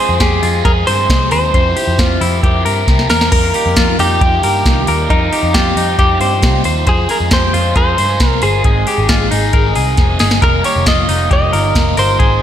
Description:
jangly indie pop; 135 BPM; 4/4; straight; A4 = 439 Hz
direct-recorded clean electric guitar; melody; 0.0-12.4 s; Eb4 to Eb5; -17 LUFS; equal; slapback echo
overdriven electric guitar; accompaniment; 0.0-12.4 s; F2 to Ab4; -21 LUFS; right 4 dB; phaser, slapback echo
direct-recorded clean electric guitar; arpeggios; 0.0-12.4 s; Eb4 to C5; -19 LUFS; left 6 dB; spring reverb, slapback echo, analog delay
vintage muted picked electric bass; bass; 0.1-12.4 s; F1 to G2; -17 LUFS; equal
soft vintage rhythm box; drums; 0.2-12.3 s; crash cymbal, hi-hat, kick drum, snare drum; -15 LUFS; equal
moderate lush hall reverb, RT60 1.8 s; big arena sound; -10 LUFS; side -10 dB against mid
0.0-3.3 A section; 3.3-12.4 A section
drum fill 2.9-3.3, 10.0-10.4
0.0 Fm; 1.5 C/F; 3.3 Ebadd9/F; 6.9 Fm; 8.6 Ab; 10.4 Ebadd9/F

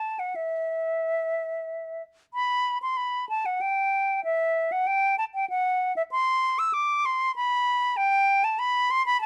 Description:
classical, baroque-style fantasia for unaccompanied flute; 96 BPM; 3/4; rubato; E minor; A4 = 440 Hz
silver concert flute; solo; 0.0-9.3 s; E5 to E6; -26 LUFS; equal
light reverb; dark, warm production; -26 LUFS; mono
0.0-2.3 A section; 2.3-9.3 B section

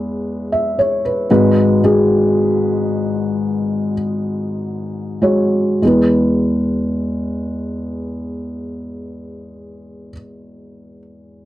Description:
pop; 49-59 BPM; 4/4; straight; E major; A4 = 438 Hz
felt-muted upright piano; solo; 0.0-11.5 s; G#1 to E5; -15 LUFS; equal
little or no reverb; dry, close 1970s-style studio recording; -15 LUFS; side -14 dB against mid
0.0-5.8 A section; 5.8-10.8 B section
slowing down 0.0-5.8
0.0 E; 1.3 G#m7; 5.8 E

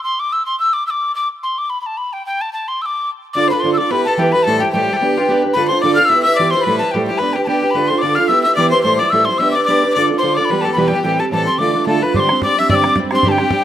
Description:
celtic folk, Celtic reel; 218 BPM; 4/4; swing 54% on 8ths; D dorian; A4 = 441 Hz
breathy mellow tin whistle; melody; 0.0-13.6 s; G5 to F6; -17 LUFS; left 1 dB
clear fiddle; second line; 3.4-13.6 s; F4 to F5; -19 LUFS; left 5 dB
fingerpicked steel-string acoustic guitar; accompaniment; 3.4-13.6 s; E2 to C5; -17 LUFS; right 3 dB
bodhran; percussion; 12.1-13.6 s; -20 LUFS; right 2 dB
light reverb, small room ambience; rough home demo mix; -13 LUFS; side -11 dB against mid
0.0-3.4 A section; 3.4-12.1 A section; 12.1-13.6 B section
0.0 N.C.; 3.4 Dm; 3.9 Em; 4.5 Am7; 5.0 G/B; 5.5 Dm; 6.1 Em; 6.6 Am7; 7.2 G/B; 7.7 Dm; 8.3 Em; 8.8 Am7; 9.4 G/B; 9.9 Dm; 10.5 Em; 11.0 Am7; 11.6 Dm; 12.1 Gsus4

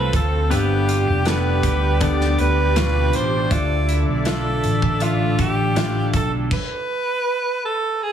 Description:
pop ballad; 80 BPM; 4/4; straight; A4 = 439 Hz
edgy alto saxophone; melody; 0.0-8.1 s; F4 to D5; -23 LUFS; right 2 dB
bright grand piano; accompaniment; 0.0-6.5 s; G2 to E5; -25 LUFS; left 5 dB
sweeping resonant pad; sustained chords; 0.0-6.5 s; C4 to D6; -30 LUFS; right 2 dB; chorus
twelve-string electric guitar; arpeggios; 0.0-6.6 s; D3 to B4; -30 LUFS; right 8 dB
fretless electric bass; bass; 0.0-6.5 s; F1 to D2; -20 LUFS; equal; ensemble chorus
loose indie drum kit; drums; 0.1-6.7 s; crash cymbal, hi-hat, kick drum, snare drum; -25 LUFS; equal
light reverb, small room ambience; heavily compressed radio sound, multiband compression; -17 LUFS; side -9 dB against mid
0.0-8.1 A section
stop 6.5-8.1
0.0 F; 0.5 G; 3.5 Dmadd9; 6.5 N.C.

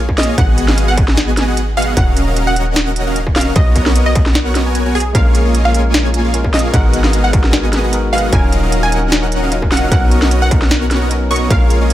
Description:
future bass; 151 BPM; 4/4; half-time; Eb minor; A4 = 440 Hz
warm 808-style bass; bass; 0.0-11.9 s; Eb1 to B1; -16 LUFS; equal; sidechain pumping
electronic kick drum; drums; 0.1-11.6 s; -14 LUFS; equal; distortion, studio reverb
wide unison pluck; melody; 0.2-11.6 s; Ab4 to C#6; -21 LUFS; right 1 dB; sidechain pumping, digital delay
dense compressed supersaw; riff; 0.2-11.9 s; Bb3 to Ab5; -18 LUFS; equal; sidechain pumping
trap drum kit; drums; 0.2-11.9 s; hi-hat, snare drum; -18 LUFS; equal; studio reverb
tine electric piano; accompaniment; 5.1-11.9 s; Gb3 to Bb4; -21 LUFS; left 3 dB; sidechain pumping, dub echo
little or no reverb; -11 LUFS; side -13 dB against mid
0.0-11.9 A section
0.4 Abm7; 2.0 Ebm9; 3.6 Bmaj9; 5.1 Bbm7; 6.7 Abm7; 8.3 Ebm9; 9.9 Bmaj9

